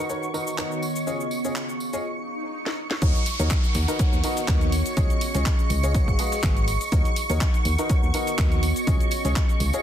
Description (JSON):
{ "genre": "piano house", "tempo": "123 BPM", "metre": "4/4", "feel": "swing 54% on 16ths", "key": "unclear", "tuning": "A4 = 440 Hz", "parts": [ { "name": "analog string pad", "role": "sustained chords", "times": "0.0-9.8 s", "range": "Db6", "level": "-31 LUFS", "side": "right 4 dB", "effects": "ensemble chorus, sidechain pumping" }, { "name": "clear upright piano", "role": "riff", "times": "0.0-9.8 s", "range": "Db3 to D#5", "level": "-31 LUFS", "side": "left 1 dB", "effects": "sidechain pumping, ping-pong delay" }, { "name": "warbly tape-like pad", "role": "texture", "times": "0.1-9.8 s", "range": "D#3 to Gb5", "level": "-32 LUFS", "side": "equal", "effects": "chorus, built-in reverb, sidechain pumping" }, { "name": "house drum kit", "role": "drums", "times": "0.1-9.8 s", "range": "cabasa, handclaps, hi-hat, snare drum", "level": "-32 LUFS", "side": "left 1 dB", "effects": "soft clipping on snare" }, { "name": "tambourine", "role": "percussion", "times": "0.1-9.8 s", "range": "none", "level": "-40 LUFS", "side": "right 1 dB", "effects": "none" }, { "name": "swell and downlifter", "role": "sound effects", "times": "2.2-6.9 s", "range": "none", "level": "-34 LUFS", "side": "left 1 dB", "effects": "none" }, { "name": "solid FM bass", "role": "bass", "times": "3.0-9.7 s", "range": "Ab1 to Eb2", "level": "-24 LUFS", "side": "equal", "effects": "sidechain pumping" }, { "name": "dusty soul sampler-style drum kit", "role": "drums", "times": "3.0-9.7 s", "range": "hi-hat, snare drum", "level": "-42 LUFS", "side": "right 2 dB", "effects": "none" }, { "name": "electronic kick drum", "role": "drums", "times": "3.0-9.5 s", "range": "none", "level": "-22 LUFS", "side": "equal", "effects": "overdrive" } ], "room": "little or no reverb", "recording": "dense, heavily limited modern master", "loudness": "-21 LUFS", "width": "side -10 dB against mid", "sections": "0.0-3.0 A section; 3.0-9.8 B section", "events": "break 2.0-3.0; swell 2.2-3.0; drum fill 2.7-3.0; drop 3.0-9.8", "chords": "0.0 Bmaj7/D#; 1.1 Dbadd9; 2.0 N.C.; 3.0 Ebm7; 3.8 Bmaj7/D#; 5.0 Dbadd9; 5.9 Abm7; 6.9 Ebm7; 7.7 Bmaj7/D#; 8.9 Dbadd9", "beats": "0.09 0.58 | 1.07 1.56 2.04 2.53 | 3.02 3.51 4.00 4.48 | 4.97 5.46 5.95 6.43 | 6.92 7.41 7.90 8.38 | 8.87 9.36" }